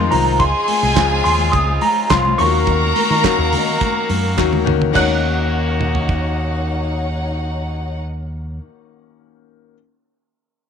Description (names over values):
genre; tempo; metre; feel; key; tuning
disco; 105 BPM; 4/4; straight; Eb dorian; A4 = 440 Hz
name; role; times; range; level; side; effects
tine electric piano; melody; 0.0-8.6 s; Bb5 to Gb6; -20 LUFS; right 1 dB; overdrive, ensemble chorus
warm studio violin section; second line; 0.0-8.0 s; Eb4 to Bb5; -21 LUFS; equal; none
bright concert grand piano; accompaniment; 0.0-9.8 s; Db3 to Ab4; -23 LUFS; left 13 dB; none
muted French horn section; sustained chords; 0.0-8.0 s; Db3 to F5; -27 LUFS; equal; none
picked electric bass with an envelope filter; bass; 0.0-8.6 s; C2 to Eb3; -20 LUFS; equal; none
damped 70s drum kit; drums; 0.1-6.2 s; crash cymbal, handclaps, hi-hat, kick drum, snare drum, toms; -23 LUFS; right 4 dB; none
congas; percussion; 0.1-5.2 s; none; -28 LUFS; left 11 dB; none
group handclap; percussion; 1.0-5.2 s; none; -31 LUFS; right 13 dB; none
room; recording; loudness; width
light reverb, studio ambience; 1960s-style stereo with parts hard left and right; -15 LUFS; side -7 dB against mid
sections
0.0-5.0 A section; 5.0-7.2 B section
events
drum fill 4.4-5.0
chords
0.4 Dbmaj7; 2.4 Ebm7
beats
| 0.40 0.97 1.54 2.10 | 2.67 3.24 3.81 4.38 | 4.95 5.52 6.09 6.66